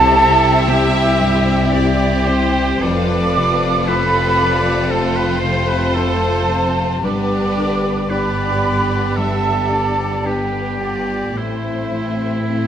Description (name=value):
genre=cinematic, emotional film score for orchestra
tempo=53-58 BPM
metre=4/4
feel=rubato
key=C major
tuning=A4 = 443 Hz
part: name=warm symphonic violin section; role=melody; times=0.0-12.7 s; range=E4 to A4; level=-28 LUFS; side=left 5 dB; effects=none
part: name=clear oboe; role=second line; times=0.0-12.7 s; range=E4 to D5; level=-24 LUFS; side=right 1 dB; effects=none
part: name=large flute ensemble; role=second line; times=0.0-12.7 s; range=E5 to D6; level=-20 LUFS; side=right 2 dB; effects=none
part: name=rich symphonic violin section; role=second line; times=0.0-12.7 s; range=A3 to F4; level=-26 LUFS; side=left 2 dB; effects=none
part: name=dark concert grand piano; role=accompaniment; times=0.0-12.7 s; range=C2 to A4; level=-23 LUFS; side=left 2 dB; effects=none
part: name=rich symphonic viola section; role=accompaniment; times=0.0-12.7 s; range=A4 to E5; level=-24 LUFS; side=equal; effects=none
part: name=dark French horn section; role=sustained chords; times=0.0-12.7 s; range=G3 to G4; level=-25 LUFS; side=left 2 dB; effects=none
part: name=rich symphonic cello section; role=bass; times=0.0-12.7 s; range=F2 to C3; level=-24 LUFS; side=right 1 dB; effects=none
part: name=rich symphonic double bass section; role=bass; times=0.0-12.7 s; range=F1 to C2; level=-24 LUFS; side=right 1 dB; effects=none
room=moderate scoring stage reverb, RT60 1.8 s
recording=none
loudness=-14 LUFS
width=side -9 dB against mid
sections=0.0-12.7 A section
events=none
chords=0.0 C; 2.8 F6; 7.0 G; 11.4 Am